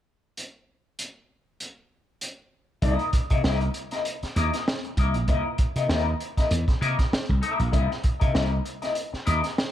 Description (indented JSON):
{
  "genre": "funk",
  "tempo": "98 BPM",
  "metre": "4/4",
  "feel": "swing 56% on 16ths",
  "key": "unclear",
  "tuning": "A4 = 442 Hz",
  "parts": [
    { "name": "crunchy breakbeat drum kit", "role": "drums", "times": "0.4-9.7 s", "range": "hi-hat, kick drum, snare drum", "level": "-26 LUFS", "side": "right 1 dB", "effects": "none" },
    { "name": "clean electric guitar", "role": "accompaniment", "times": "2.8-9.5 s", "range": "Bb3 to E5", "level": "-28 LUFS", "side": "left 4 dB", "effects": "wah, lush chorus" },
    { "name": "slap bass", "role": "bass", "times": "2.8-9.4 s", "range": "Bb1 to C3", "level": "-26 LUFS", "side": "equal", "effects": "none" }
  ],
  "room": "light reverb",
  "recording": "dark, warm production",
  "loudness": "-22 LUFS",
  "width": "side -12 dB against mid",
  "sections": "0.4-2.8 A section; 2.8-9.7 B section",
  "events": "none",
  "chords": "0.4 N.C.; 2.8 C7#9"
}